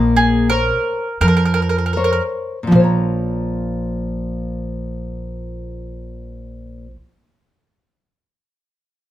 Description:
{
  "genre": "italian folk, Italian serenade",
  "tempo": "78-86 BPM",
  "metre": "4/4",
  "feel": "straight",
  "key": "Bb minor",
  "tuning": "A4 = 440 Hz",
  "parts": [
    { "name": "nylon-string guitar", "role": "accompaniment", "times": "0.0-7.1 s", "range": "Bb2 to Bb5", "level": "-19 LUFS", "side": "left 1 dB", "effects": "none" },
    { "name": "upright bass", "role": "bass", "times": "0.0-7.0 s", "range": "Bb1 to F2", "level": "-23 LUFS", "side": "equal", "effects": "none" },
    { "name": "mandolin", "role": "melody", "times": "0.2-2.2 s", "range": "Ab4 to Bb4", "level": "-18 LUFS", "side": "right 3 dB", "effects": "none" }
  ],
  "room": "moderate studio reverb, RT60 0.7 s",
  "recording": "band playing live in one room",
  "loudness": "-16 LUFS",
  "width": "side -13 dB against mid",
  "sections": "0.0-2.7 A section; 2.7-5.8 B section",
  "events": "slowing down 0.0-2.7",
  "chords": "0.0 Bbmadd9; 2.7 Bbm",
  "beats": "0.49 1.21 1.96 | 2.72 3.49 4.24 5.00"
}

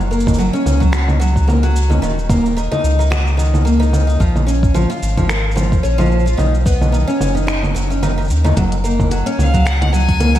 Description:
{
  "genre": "folktronica",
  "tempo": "110 BPM",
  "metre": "4/4",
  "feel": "swing 56% on 16ths",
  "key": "F# major",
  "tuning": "A4 = 439 Hz",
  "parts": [
    { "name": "warm sub bass", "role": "bass", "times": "0.0-10.4 s", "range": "D#1 to D#2", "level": "-16 LUFS", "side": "equal", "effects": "tube saturation" },
    { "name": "organic electronic drum kit", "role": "drums", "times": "0.0-10.4 s", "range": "cabasa, congas, finger snaps, hi-hat", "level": "-21 LUFS", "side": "right 1 dB", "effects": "none" },
    { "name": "picked twelve-string acoustic guitar", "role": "arpeggios", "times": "0.1-10.4 s", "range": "D#3 to A#4", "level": "-19 LUFS", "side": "equal", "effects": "analog delay" },
    { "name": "electronic kick drum", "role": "drums", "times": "0.3-10.2 s", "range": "none", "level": "-17 LUFS", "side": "equal", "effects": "none" },
    { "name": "bright violin", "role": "melody", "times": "9.4-10.4 s", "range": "E#5 to G#5", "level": "-21 LUFS", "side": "left 2 dB", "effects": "analog delay" }
  ],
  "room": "light reverb, small room ambience",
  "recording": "vinyl crackle",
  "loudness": "-13 LUFS",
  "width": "side -12 dB against mid",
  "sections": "0.0-10.4 A section",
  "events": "none",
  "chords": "0.0 F#; 2.0 D#5; 4.2 A#m; 6.4 Badd9; 8.6 F#add9",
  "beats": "0.39 0.94 1.48 | 2.03 2.57 3.12 3.66 | 4.21 4.75 5.30 5.85 | 6.39 6.94 7.48 8.03 | 8.57 9.12 9.66 10.21"
}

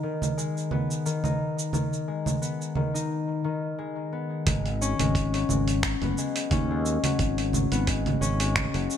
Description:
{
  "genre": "organic downtempo",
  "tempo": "88 BPM",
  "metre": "4/4",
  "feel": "swing 55% on 16ths",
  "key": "G# minor pentatonic",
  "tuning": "A4 = 439 Hz",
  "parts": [
    { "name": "concert harp", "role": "arpeggios", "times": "0.0-9.0 s", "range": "D#3 to D#4", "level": "-28 LUFS", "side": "left 5 dB", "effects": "digital delay" },
    { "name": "dusty soul sampler-style drum kit", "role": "drums", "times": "0.2-9.0 s", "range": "congas, finger snaps, hi-hat, shaker", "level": "-28 LUFS", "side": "right 4 dB", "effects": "none" },
    { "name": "sustaining fretless electric bass", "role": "bass", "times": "4.5-8.9 s", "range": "F#1 to D#2", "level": "-27 LUFS", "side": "right 1 dB", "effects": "analog chorus, sidechain pumping" },
    { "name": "electronic kick drum", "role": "drums", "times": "4.5-8.7 s", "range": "none", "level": "-28 LUFS", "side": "right 1 dB", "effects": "none" }
  ],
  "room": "light reverb",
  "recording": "none",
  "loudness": "-24 LUFS",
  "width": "side -9 dB against mid",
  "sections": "0.0-4.5 A section; 4.5-9.0 B section",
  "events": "break 3.1-4.5",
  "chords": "0.0 G#m; 4.5 G#m7",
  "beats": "0.38 1.06 | 1.74 2.42 3.10 3.78 | 4.47 5.15 5.83 6.51 | 7.19 7.88 8.56"
}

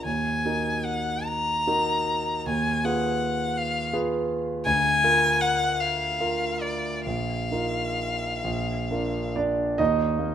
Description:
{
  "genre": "classical, romantic duo for violin and grand piano",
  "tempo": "43-57 BPM (dotted quarters)",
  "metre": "6/8",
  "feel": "rubato",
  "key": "Eb minor",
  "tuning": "A4 = 440 Hz",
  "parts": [
    { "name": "rich violin", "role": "melody", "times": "0.0-9.3 s", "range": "D5 to Bb5", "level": "-25 LUFS", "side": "left 2 dB", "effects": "none" },
    { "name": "warm concert grand piano", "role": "accompaniment", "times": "0.0-10.3 s", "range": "Bb1 to Eb5", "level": "-26 LUFS", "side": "right 2 dB", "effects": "none" }
  ],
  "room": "light reverb",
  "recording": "close, detailed microphones",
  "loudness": "-23 LUFS",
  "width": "side -9 dB against mid",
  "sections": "0.0-9.8 A section",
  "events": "none",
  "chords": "0.1 Ebm; 2.5 Fm7b5/Eb; 4.7 Bb7/D; 7.1 Bbsus4; 8.4 Bb; 9.8 Eb5",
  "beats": "| 0.05 1.26 | 2.47 3.58 | 4.66 5.79 | 7.05 8.44 | 9.79"
}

